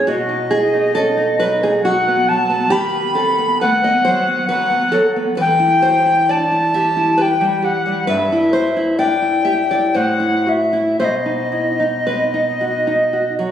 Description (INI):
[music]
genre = romantic duo for recorder and classical guitar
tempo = 55-70 BPM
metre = 3/4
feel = rubato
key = E minor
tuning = A4 = 439 Hz
[part]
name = mellow tenor recorder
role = melody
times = 0.0-13.3 s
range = D#5 to B5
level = -16 LUFS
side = left 1 dB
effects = none
[part]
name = nylon-string guitar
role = accompaniment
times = 0.0-13.5 s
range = G2 to E5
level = -18 LUFS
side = right 1 dB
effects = none
[sound]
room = wet recital hall reverb, RT60 1.7 s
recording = recorded on a phone in the room, studio reverb, compression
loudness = -14 LUFS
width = side -10 dB against mid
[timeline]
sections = 0.0-13.5 A section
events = none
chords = 0.1 B; 2.7 B7/D#; 5.4 Em; 8.1 Em/G; 9.9 Am; 11.0 B